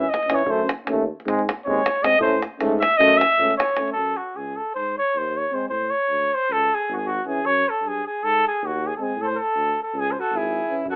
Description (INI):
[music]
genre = balkan folk, Balkan brass band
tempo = 311 BPM (eighths)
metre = 9/8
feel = straight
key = F# dorian sharp4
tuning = A4 = 440 Hz
[part]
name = dark trumpet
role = melody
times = 0.0-11.0 s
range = F#4 to E5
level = -20 LUFS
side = equal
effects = none
[part]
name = dark French horn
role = accompaniment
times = 0.0-10.8 s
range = B#3 to C#4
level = -29 LUFS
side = equal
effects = none
[part]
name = warm trombone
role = accompaniment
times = 0.0-10.8 s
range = E3 to A3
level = -26 LUFS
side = equal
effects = none
[part]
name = mellow tuba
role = bass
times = 0.0-11.0 s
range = G#1 to A2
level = -28 LUFS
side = equal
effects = none
[part]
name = davul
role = percussion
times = 0.1-3.9, 10.9-11.0 s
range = none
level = -28 LUFS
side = equal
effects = none
[part]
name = warm alto saxophone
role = second line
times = 10.2-11.0 s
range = E4 to F#4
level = -25 LUFS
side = right 1 dB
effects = none
[sound]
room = moderate small room reverb, RT60 0.5 s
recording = telephone sound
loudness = -19 LUFS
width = side -32 dB against mid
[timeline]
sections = 0.0-3.9 A section; 3.9-11.0 B section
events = trumpet solo 0.0-3.9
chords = 0.5 F#m; 1.2 G#; 2.2 A; 3.0 F#m; 4.7 G#; 5.7 A; 6.5 C#m; 7.4 F#5; 8.2 G#; 9.2 Asus4; 9.9 C#m